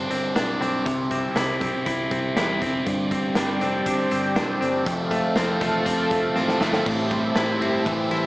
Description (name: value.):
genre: jangly indie pop.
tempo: 120 BPM.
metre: 4/4.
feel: straight.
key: C major.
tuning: A4 = 440 Hz.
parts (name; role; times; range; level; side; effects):
biting overdriven guitar; accompaniment; 0.0-8.3 s; F2 to G4; -26 LUFS; right 2 dB; phaser.
clean electric guitar; arpeggios; 0.0-8.3 s; F2 to E4; -25 LUFS; left 1 dB; none.
vintage muted picked electric bass; bass; 0.0-8.3 s; E1 to E2; -36 LUFS; equal; none.
raw garage drum kit; drums; 0.1-8.2 s; crash cymbal, hi-hat, kick drum, ride cymbal, snare drum; -28 LUFS; equal; none.
warm analog pad; sustained chords; 2.9-8.3 s; C4 to A5; -26 LUFS; equal; chorus.
room: moderate studio reverb, RT60 0.7 s.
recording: small speaker sound.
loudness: -20 LUFS.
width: side -20 dB against mid.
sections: 0.0-6.9 A section; 6.9-8.3 B section.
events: drum fill 6.4-6.9.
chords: 0.0 Gsus4; 0.9 C; 2.9 Gsus4; 4.9 F; 6.9 Am7.